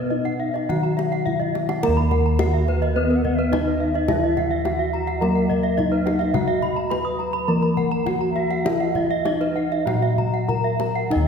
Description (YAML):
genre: Balinese gamelan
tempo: 95-106 BPM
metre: 4/4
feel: straight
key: Eb pelog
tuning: A4 = 440 Hz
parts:
  - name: gamelan-type bronze metallophone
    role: melody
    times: 0.0-11.3 s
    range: Cb4 to Cb5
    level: -25 LUFS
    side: left 1 dB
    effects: none
  - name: gamelan-type bronze metallophone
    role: accompaniment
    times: 0.0-11.3 s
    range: Eb3 to Cb4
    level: -30 LUFS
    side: right 2 dB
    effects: none
  - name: gamelan-type bronze metallophone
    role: arpeggios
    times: 0.0-11.1 s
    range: Bb4 to Eb6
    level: -28 LUFS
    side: right 5 dB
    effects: none
  - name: gamelan-type bossed gongs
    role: bass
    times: 0.0-11.3 s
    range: Eb2 to Cb5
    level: -23 LUFS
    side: equal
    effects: none
  - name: gamelan-type bronze metallophone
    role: arpeggios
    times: 0.1-11.3 s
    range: Cb5 to Cb6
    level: -28 LUFS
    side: left 4 dB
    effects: none
  - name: kendang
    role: percussion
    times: 0.3-11.3 s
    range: none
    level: -30 LUFS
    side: left 3 dB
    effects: none
  - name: bansuri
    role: second line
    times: 2.8-10.4 s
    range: Bb4 to Gb5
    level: -31 LUFS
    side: right 3 dB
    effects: none
room: wet concert hall reverb, RT60 2.2 s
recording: recorded in a church or concert hall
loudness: -19 LUFS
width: side -6 dB against mid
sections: 0.0-1.8 A section; 1.8-11.1 B section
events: drum fill 1.4-1.8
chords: none